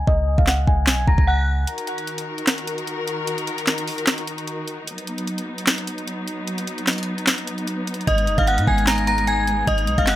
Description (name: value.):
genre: hip hop, trap.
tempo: 150 BPM.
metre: 4/4.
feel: half-time.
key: Eb minor.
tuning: A4 = 440 Hz.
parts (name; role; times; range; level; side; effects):
metallic FM bell; melody; 0.0-1.4, 8.1-10.2 s; Eb5 to Bb6; -22 LUFS; equal; chorus, low-pass filter, analog delay.
warm 808-style bass; bass; 0.0-1.7, 8.1-10.2 s; Gb1 to Ab2; -21 LUFS; equal; none.
trap drum kit; drums; 0.1-10.2 s; handclaps, hi-hat, kick drum, snare drum; -21 LUFS; equal; none.
rich symphonic string section; sustained chords; 1.7-10.2 s; Eb3 to Bb4; -26 LUFS; left 1 dB; none.
room: digital ambience.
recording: echo-heavy mix.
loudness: -19 LUFS.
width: side -14 dB against mid.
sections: 0.0-10.2 A section.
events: filter sweep on synth bell 0.0-1.7; break 0.1-1.7, 1.7-8.1.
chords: 0.0 Dbsus4; 1.7 Ebm; 4.9 B; 8.1 Abm.